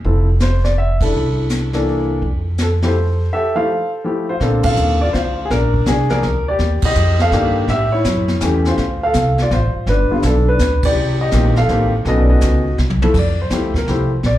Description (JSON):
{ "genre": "jazz piano trio", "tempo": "165 BPM", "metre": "3/4", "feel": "swing 65% on 8ths", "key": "F major, Bb major from 4.4 s", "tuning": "A4 = 440 Hz", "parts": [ { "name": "upright bass", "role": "bass", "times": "0.0-14.4 s", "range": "F1 to Bb2", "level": "-17 LUFS", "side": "equal", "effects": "none" }, { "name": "jazz brush drum kit", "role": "drums", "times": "0.0-14.4 s", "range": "brushed snare drum, crash cymbal, hi-hat, kick drum, ride cymbal, snare drum, toms", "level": "-22 LUFS", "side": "equal", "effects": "none" }, { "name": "warm upright piano", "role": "melody", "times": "0.1-14.4 s", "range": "D3 to F5", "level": "-18 LUFS", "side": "left 1 dB", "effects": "slapback echo" } ], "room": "light reverb", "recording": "live gig heard through the venue's PA, club reverb", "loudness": "-14 LUFS", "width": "side -14 dB against mid", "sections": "0.0-4.4 A section; 4.4-13.1 B section; 13.1-14.4 C section", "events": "band accent 1.0, 4.6, 6.8, 10.8; drum fill 12.8-13.1; upright piano solo 13.1-14.4", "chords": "0.0 Fmaj7; 1.1 C13; 2.2 Fmaj9; 4.4 Bbmaj9; 5.5 Bb7; 6.6 Ebmaj7; 7.7 A7; 8.8 Dm7; 9.9 G; 11.0 Cm7; 12.1 B9; 12.8 C6; 13.1 Fmaj9" }